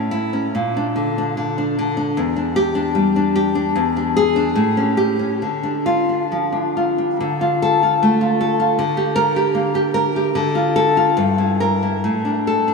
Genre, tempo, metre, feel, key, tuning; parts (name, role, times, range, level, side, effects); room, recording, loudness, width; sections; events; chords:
romantic piece for solo classical guitar; 64-79 BPM; 2/4; rubato; D minor; A4 = 440 Hz
nylon-string guitar; solo; 0.0-12.7 s; E2 to Bb4; -16 LUFS; left 1 dB; tape echo
wet lush hall reverb, RT60 2.7 s; dreamy mix soaked in reverb; -16 LUFS; side -4 dB against mid
0.0-7.2 A section; 7.2-12.7 A section
0.0 A; 0.5 Bb; 2.2 Em7; 3.8 E7; 4.6 A7; 5.4 Dm; 8.8 Gm/D; 10.4 Dm; 11.2 Edim/G; 12.0 Asus4